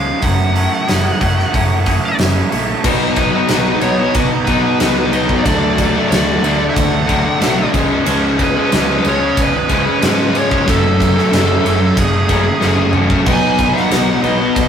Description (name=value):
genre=quiet-loud alternative rock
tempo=92 BPM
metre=4/4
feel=straight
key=F# minor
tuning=A4 = 440 Hz
part: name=high-gain lead guitar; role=melody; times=0.0-14.7 s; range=G#4 to G#5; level=-20 LUFS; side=right 1 dB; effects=distortion
part: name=twangy electric guitar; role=arpeggios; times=0.0-2.8 s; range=F#2 to G#4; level=-26 LUFS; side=left 5 dB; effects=none
part: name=distorted electric guitar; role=riff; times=0.0-14.7 s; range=F#2 to D#4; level=-18 LUFS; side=right 4 dB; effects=distortion
part: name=hollow-body short-scale fingered electric bass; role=bass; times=0.0-14.7 s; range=F#1 to G#2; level=-20 LUFS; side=equal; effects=none
part: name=big rock drum kit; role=drums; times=0.2-14.7 s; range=crash cymbal, hi-hat, kick drum, ride cymbal, snare drum, toms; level=-18 LUFS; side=equal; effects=none
part: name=fuzz guitar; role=riff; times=2.8-14.7 s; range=F#2 to D#4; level=-17 LUFS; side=left 5 dB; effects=distortion
room=moderate studio reverb, RT60 0.5 s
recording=rough rehearsal-room recording, warm saturation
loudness=-12 LUFS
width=side -8 dB against mid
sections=0.0-2.8 A section; 2.8-14.7 B section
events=drum fill 12.6-13.3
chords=0.2 F#madd9; 2.8 B; 5.5 D; 7.7 C#; 10.7 F#madd9; 13.3 B